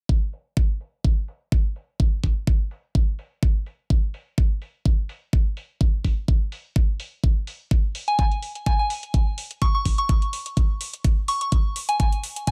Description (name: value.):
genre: bass house.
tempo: 126 BPM.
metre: 4/4.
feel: swing 54% on 16ths.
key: unclear.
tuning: A4 = 440 Hz.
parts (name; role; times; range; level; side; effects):
electronic kick drum; drums; 0.1-12.5 s; none; -22 LUFS; equal; none.
electronic hi-hat; drums; 0.3-12.5 s; none; -37 LUFS; equal; low-pass filter on hats, low-pass filter on room.
soft synth bell; melody; 8.1-12.5 s; G#5 to C#6; -28 LUFS; equal; chorus, digital delay.
room: little or no reverb.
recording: none.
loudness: -24 LUFS.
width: mono.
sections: 0.1-12.5 A section.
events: filter sweep on drum 0.1-12.5.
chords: none.